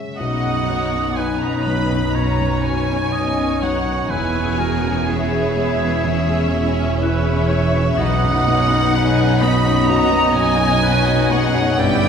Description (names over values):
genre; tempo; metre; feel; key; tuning
cinematic; 62 BPM; 4/4; rubato; B major; A4 = 440 Hz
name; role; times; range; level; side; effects
warm studio violin section; melody; 0.0-12.1 s; E5 to B5; -23 LUFS; left 2 dB; none
warm grand piano; accompaniment; 0.0-12.1 s; B1 to E4; -23 LUFS; right 1 dB; none
concert harp; arpeggios; 0.0-12.1 s; F#2 to C#5; -25 LUFS; left 2 dB; none
clear oboe; second line; 0.2-12.1 s; G#4 to D#5; -24 LUFS; right 2 dB; none
warm studio violin section; second line; 0.2-12.1 s; F#4 to D#5; -28 LUFS; left 2 dB; none
dark studio viola section; accompaniment; 0.2-12.1 s; B3 to G#4; -26 LUFS; right 1 dB; none
mellow French horn section; sustained chords; 0.2-12.1 s; B3 to E4; -26 LUFS; left 6 dB; none
rich studio double bass section; bass; 0.2-12.1 s; E1 to B1; -25 LUFS; right 3 dB; none
warm studio cello section; bass; 0.2-12.1 s; E2 to B2; -26 LUFS; right 4 dB; none
timpani; percussion; 8.0-9.4 s; B2; -29 LUFS; left 1 dB; none
room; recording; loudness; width
wet church reverb, RT60 2.7 s; recorded in a church or concert hall; -15 LUFS; side -7 dB against mid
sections
0.2-12.1 A section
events
none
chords
0.2 Badd9; 4.1 E6; 8.0 Badd9